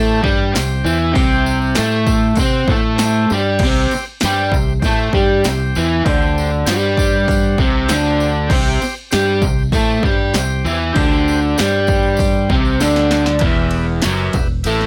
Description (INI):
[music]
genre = garage rock duo or trio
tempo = 98 BPM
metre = 4/4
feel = straight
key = unclear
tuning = A4 = 440 Hz
[part]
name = combo organ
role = sustained chords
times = 0.0-14.9 s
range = G4 to G5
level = -28 LUFS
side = equal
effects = subtle chorus
[part]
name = crunchy overdriven guitar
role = riff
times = 0.0-14.9 s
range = E2 to C5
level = -19 LUFS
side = equal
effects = none
[part]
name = modern bright fingered electric bass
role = bass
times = 0.0-14.9 s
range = E1 to C3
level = -22 LUFS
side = equal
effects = overdrive
[part]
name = tambourine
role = percussion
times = 0.1-14.8 s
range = none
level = -34 LUFS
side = equal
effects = none
[part]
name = punchy analog drum machine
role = drums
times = 0.2-14.9 s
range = crash cymbal, hi-hat, kick drum, ride cymbal, snare drum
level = -21 LUFS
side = equal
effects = none
[sound]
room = little or no reverb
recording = none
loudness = -16 LUFS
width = mono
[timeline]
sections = 0.0-13.4 A section; 13.4-14.9 B section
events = drum fill 12.8-13.4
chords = 0.0 C5; 13.4 Em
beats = 0.55 | 1.16 1.77 2.38 2.99 | 3.60 4.22 4.83 5.44 | 6.05 6.67 7.28 7.89 | 8.51 9.12 9.74 10.35 | 10.97 11.58 12.20 12.81 | 13.43 14.05 14.66